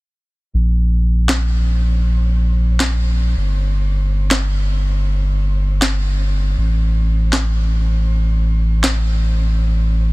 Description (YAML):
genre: future bass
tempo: 159 BPM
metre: 4/4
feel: swing 53% on 16ths, half-time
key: unclear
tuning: A4 = 439 Hz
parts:
  - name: saturated sub bass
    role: bass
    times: 0.5-10.1 s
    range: G1 to Bb1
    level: -15 LUFS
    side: equal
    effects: none
  - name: electronic snare drum and handclaps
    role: drums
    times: 1.3-8.9 s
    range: none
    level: -24 LUFS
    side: equal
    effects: none
room: little or no reverb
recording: dense, heavily limited modern master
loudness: -15 LUFS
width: side -22 dB against mid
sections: 0.5-10.1 A section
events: none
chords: none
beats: | 0.54 0.92 1.29 1.67 | 2.05 2.42 2.80 3.18 | 3.56 3.93 4.31 4.69 | 5.07 5.44 5.82 6.20 | 6.58 6.95 7.33 7.71 | 8.08 8.46 8.84 9.22 | 9.59 9.97